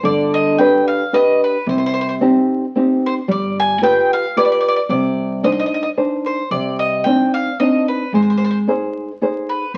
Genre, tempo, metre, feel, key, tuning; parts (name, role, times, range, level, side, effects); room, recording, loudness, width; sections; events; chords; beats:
italian folk, Italian serenade; 112 BPM; 3/4; swing 53% on 8ths; C harmonic minor; A4 = 440 Hz
bowl-back mandolin; melody; 0.0-9.8 s; B4 to Ab5; -22 LUFS; equal
nylon-string guitar; accompaniment; 0.0-9.6 s; C3 to C5; -18 LUFS; equal
upright bass; bass; 0.0-9.8 s; F1 to C2; -30 LUFS; equal
wet studio reverb, RT60 0.9 s; very old 78 rpm record, vinyl crackle; -17 LUFS; mono
0.0-6.5 A section; 6.5-9.8 A section
0.0 G; 1.7 Cm; 3.3 G7; 4.9 Cmadd9; 8.1 Ab
| 0.04 0.58 1.12 | 1.67 2.20 2.74 | 3.28 3.82 4.35 | 4.89 5.43 5.97 | 6.51 7.05 7.59 | 8.13 8.67 9.20 | 9.74